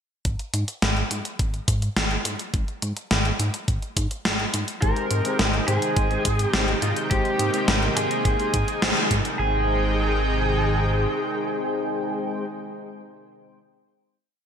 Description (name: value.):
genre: synthwave.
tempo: 105 BPM.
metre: 4/4.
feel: straight.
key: Ab major.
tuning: A4 = 439 Hz.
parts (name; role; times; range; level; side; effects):
gated 80s digital drum machine; drums; 0.2-9.4 s; hi-hat, snare drum; -25 LUFS; equal; gated reverb, gated reverb snare.
chorused synth bass; bass; 0.3-11.1 s; Ab1 to Ab2; -26 LUFS; equal; none.
electronic kick drum; drums; 0.3-9.2 s; none; -25 LUFS; equal; none.
lead guitar through a small cranked amp; melody; 4.8-12.4 s; F4 to Bb4; -26 LUFS; equal; overdrive, ping-pong delay.
lush unison pad; sustained chords; 4.8-12.4 s; C3 to G5; -29 LUFS; right 1 dB; chorus, sidechain pumping.
mellow synth brass; stabs; 4.8-12.4 s; Ab3 to G5; -30 LUFS; left 2 dB; chorus, cassette tape, digital delay.
room: moderate lush hall reverb, RT60 2.3 s.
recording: bright 1980s-style digital production.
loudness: -21 LUFS.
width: side -8 dB against mid.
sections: 0.3-9.4 verse; 9.4-11.7 final chord.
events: band accent 8.8.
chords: 0.3 N.C.; 4.8 Abmaj7.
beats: | 0.25 0.82 1.39 1.97 | 2.54 3.11 3.68 4.25 | 4.82 5.39 5.96 6.54 | 7.11 7.68 8.25 8.82 | 9.39 9.96 10.54 11.11.